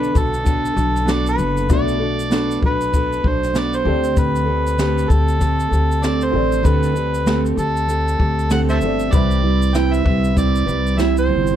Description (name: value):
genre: acoustic pop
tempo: 97 BPM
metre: 4/4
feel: swing 60% on 16ths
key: D mixolydian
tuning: A4 = 440 Hz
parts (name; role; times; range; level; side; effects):
- overdriven harmonica; melody; 0.0-11.6 s; A4 to G5; -22 LUFS; right 1 dB; none
- felt-muted upright piano; accompaniment; 0.0-11.6 s; A3 to B5; -30 LUFS; left 7 dB; none
- fingerpicked plugged-in steel-string acoustic guitar; accompaniment; 0.0-11.6 s; C3 to B4; -21 LUFS; right 3 dB; none
- upright bass; bass; 0.0-11.6 s; F#1 to D2; -20 LUFS; left 1 dB; none
- jazz brush drum kit; drums; 0.0-11.6 s; kick drum, shaker, snare drum; -21 LUFS; left 1 dB; none
room: light reverb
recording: dark, warm production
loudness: -15 LUFS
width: side -10 dB against mid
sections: 0.0-11.6 A section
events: none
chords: 0.0 Bm7; 3.9 D7sus4; 9.1 Cmaj7